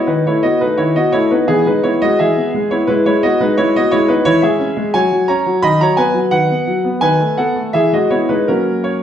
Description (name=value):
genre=classical-period piano sonatina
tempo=86 BPM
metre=2/4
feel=rubato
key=E major, B major from 4.2 s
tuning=A4 = 440 Hz
part: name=clear concert grand piano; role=solo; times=0.0-9.0 s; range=D#3 to B5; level=-12 LUFS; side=equal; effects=none
room=wet recital hall reverb, RT60 1.4 s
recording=heard from further back in the room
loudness=-12 LUFS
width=side -9 dB against mid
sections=0.0-9.0 A section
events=none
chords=0.1 B7/D#; 1.5 E; 2.9 E/G#; 4.2 C#m/E; 4.9 F#; 5.6 B/D#; 7.0 B7/D#; 7.7 E; 8.5 F#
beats=| 0.07 0.78 | 1.48 2.18 | 2.87 3.56 | 4.24 4.93 | 5.63 6.32 | 7.03 7.74 | 8.48